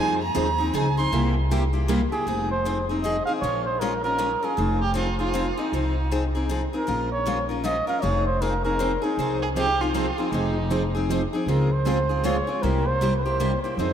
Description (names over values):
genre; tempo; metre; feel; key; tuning
acoustic string swing (jazz manouche); 156 BPM; 3/4; swing 61% on 8ths; F minor; A4 = 445 Hz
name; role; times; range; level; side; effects
warm violin; second line; 0.0-1.1, 4.8-6.3, 9.4-11.1 s; Eb4 to C6; -29 LUFS; right 4 dB; none
picked plugged-in steel-string acoustic guitar; accompaniment; 0.0-2.0, 9.2-13.9 s; C3 to Ab4; -29 LUFS; right 5 dB; none
picked steel-string acoustic guitar; accompaniment; 0.0-13.9 s; C3 to Bb4; -27 LUFS; left 4 dB; none
upright bass; bass; 0.0-13.9 s; F1 to F2; -26 LUFS; equal; none
trumpet with cup mute; melody; 2.1-9.4, 11.5-13.9 s; Ab4 to F5; -27 LUFS; right 2 dB; none
room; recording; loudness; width
wet cathedral reverb, RT60 5.0 s; in a vast, echoing space; -21 LUFS; side -9 dB against mid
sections
0.0-2.3 A section; 2.3-13.9 B section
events
violin solo 0.0-2.3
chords
0.0 Fm7; 1.1 C7; 2.3 Fm7; 3.4 Bbm7; 4.6 Fm7; 6.9 Bbm7; 8.0 Fm7; 11.5 Dbmaj7; 12.6 C7